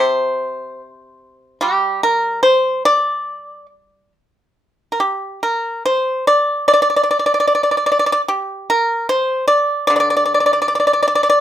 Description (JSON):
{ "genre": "chinese traditional, Chinese solo plucked strings", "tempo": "69-78 BPM", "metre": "4/4", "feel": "rubato", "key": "unclear", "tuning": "A4 = 438 Hz", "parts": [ { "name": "pipa", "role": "solo", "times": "0.0-11.4 s", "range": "C3 to D5", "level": "-14 LUFS", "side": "equal", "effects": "none" } ], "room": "moderate studio reverb, RT60 0.6 s", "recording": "rough home demo mix", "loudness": "-14 LUFS", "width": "side -11 dB against mid", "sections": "0.0-11.4 A section", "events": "none", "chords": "none", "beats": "0.00 0.81 | 1.63 2.45 3.28 4.12 | 4.98 5.84 6.68 7.49 | 8.31 9.13 9.93 10.71" }